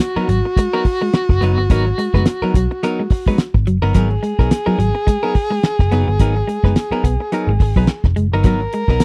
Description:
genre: funk.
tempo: 107 BPM.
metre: 4/4.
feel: swing 56% on 16ths.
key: G# minor.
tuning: A4 = 440 Hz.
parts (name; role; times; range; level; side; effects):
breathy tenor saxophone; second line; 0.0-9.0 s; F#4 to A#4; -24 LUFS; equal; none.
hollow-body jazz guitar; accompaniment; 0.0-9.0 s; F#3 to B4; -24 LUFS; equal; none.
electric guitar at the edge of break-up; riff; 0.0-9.0 s; F#3 to B3; -24 LUFS; equal; none.
vintage muted picked electric bass; bass; 0.2-9.0 s; E#1 to B1; -20 LUFS; equal; none.
cloth-damped thuddy drum kit; drums; 0.3-9.0 s; hi-hat, kick drum, snare drum; -17 LUFS; equal; none.
room: little or no reverb.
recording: dry, close 1970s-style studio recording.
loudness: -17 LUFS.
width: mono.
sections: 0.0-9.0 A section.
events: none.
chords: 0.0 G#m9.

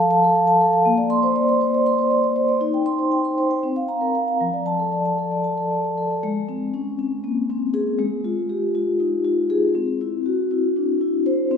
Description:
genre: classical, contemporary piece for solo vibraphone.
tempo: 238 BPM (eighths).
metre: 7/8.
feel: rubato.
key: F major, Ab major from 6.2 s.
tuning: A4 = 441 Hz.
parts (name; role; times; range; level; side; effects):
vibraphone with soft mallets; solo; 0.0-11.6 s; F3 to C6; -18 LUFS; left 1 dB; none.
room: wet recital hall reverb, RT60 1.5 s.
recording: recorded in a church or concert hall.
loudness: -18 LUFS.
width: side -7 dB against mid.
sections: 0.0-6.2 A section; 6.2-11.6 B section.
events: none.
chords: 0.0 F; 0.9 Bbadd9; 2.6 Eb6; 3.6 C7sus4; 4.4 F6; 6.2 Abadd9; 8.0 Fm9/Ab; 9.8 Cadd9.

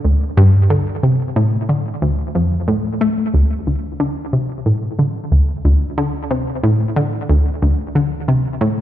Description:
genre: ambient.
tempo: 91 BPM.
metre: 4/4.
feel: straight.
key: unclear.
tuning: A4 = 440 Hz.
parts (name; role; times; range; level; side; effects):
analog pluck; solo; 0.0-8.8 s; D2 to A3; -14 LUFS; equal; chorus, cassette tape, tape echo.
room: wet concert hall reverb, RT60 2.1 s.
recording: none.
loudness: -15 LUFS.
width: side -12 dB against mid.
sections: 0.0-8.8 A section.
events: none.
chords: none.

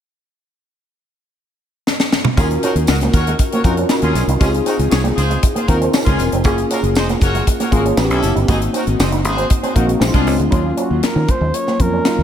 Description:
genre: polished 1980s jazz-funk pop.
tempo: 118 BPM.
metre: 4/4.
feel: straight.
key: Eb dorian.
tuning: A4 = 438 Hz.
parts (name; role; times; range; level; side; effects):
tight funk drum kit; drums; 1.9-12.2 s; hi-hat, kick drum, snare drum, toms; -18 LUFS; equal; gated reverb.
clear horn section; second line; 2.4-10.3 s; Bb3 to Eb5; -24 LUFS; left 1 dB; ping-pong delay.
tine electric piano; accompaniment; 2.4-12.2 s; Gb3 to Bb4; -19 LUFS; left 1 dB; ensemble chorus.
electric guitar with an envelope filter; riff; 2.4-12.1 s; Ab3 to Gb4; -24 LUFS; right 4 dB; lush chorus.
fingered electric bass; bass; 2.4-12.2 s; Fb1 to Eb3; -18 LUFS; equal; tube saturation.
tambourine; percussion; 2.4-10.4 s; none; -34 LUFS; right 5 dB; none.
warm flugelhorn; melody; 10.8-12.2 s; Gb4 to Db5; -21 LUFS; equal; none.
room: light reverb, small room ambience.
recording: none.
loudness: -14 LUFS.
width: side -9 dB against mid.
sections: 0.3-2.4 A section; 2.4-10.5 B section; 10.5-12.2 C section.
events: drum fill 1.9-2.4.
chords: 0.3 N.C.; 2.4 Ebm7; 4.4 Dbmaj7; 6.4 Gbmaj7; 8.0 A9; 8.5 Ab7; 10.0 Bb7; 10.5 Ebm7.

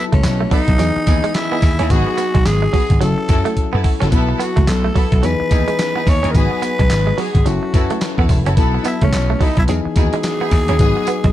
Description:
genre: R&B, new jack swing.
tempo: 108 BPM.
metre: 4/4.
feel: swing 60% on 16ths.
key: unclear.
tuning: A4 = 440 Hz.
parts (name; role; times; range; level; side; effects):
growling tenor saxophone; melody; 0.0-11.3 s; C#4 to C#5; -21 LUFS; equal; none.
soft electric-piano-like synth keys; accompaniment; 0.0-11.3 s; E3 to D#5; -24 LUFS; left 7 dB; chorus.
direct-recorded clean electric guitar; riff; 0.0-11.3 s; F#3 to C#4; -25 LUFS; right 7 dB; lush chorus.
vintage slap bass; bass; 0.1-11.3 s; E1 to F#2; -17 LUFS; equal; none.
dusty soul sampler-style drum kit; drums; 0.1-11.3 s; handclaps, hi-hat, kick drum, snare drum, tambourine; -17 LUFS; equal; none.
warm studio string section; stabs; 0.5-11.1 s; B3 to A4; -26 LUFS; right 1 dB; none.
room: little or no reverb.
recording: dark, warm production.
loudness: -13 LUFS.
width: side -13 dB against mid.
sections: 0.0-11.3 A section.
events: drum fill 3.6-4.1.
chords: 0.0 B7sus4; 0.8 Emaj7; 1.9 G#m7; 3.0 F#m7; 4.1 B7sus4; 5.2 Emaj7; 6.3 G#m7; 7.5 F#m7; 8.6 B7sus4; 9.7 Emaj7; 10.8 G#m7.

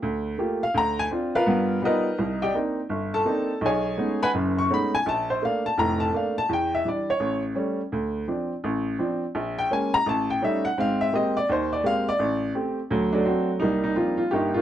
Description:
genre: solo jazz.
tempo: 168 BPM.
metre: 4/4.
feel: swing 65% on 8ths.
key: unclear.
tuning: A4 = 440 Hz.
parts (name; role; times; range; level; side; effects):
clear upright piano; solo; 0.0-14.6 s; F1 to C#6; -22 LUFS; equal; none.
room: small room ambience.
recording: dry, close 1970s-style studio recording.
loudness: -22 LUFS.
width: side -11 dB against mid.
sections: 0.0-2.2 A section; 2.2-13.6 A section; 13.6-14.6 B section.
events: upright piano solo 0.0-13.6.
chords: 0.0 Gm9; 0.7 Dm7; 1.5 G7alt; 2.2 Cm9; 3.6 B13; 5.1 Bbmaj7; 6.5 Em7; 7.2 A7; 7.9 Dm7; 9.3 Bbm7; 10.1 A7#11; 10.8 Abmaj9; 12.2 Amadd11; 12.9 D7; 13.6 Cm11.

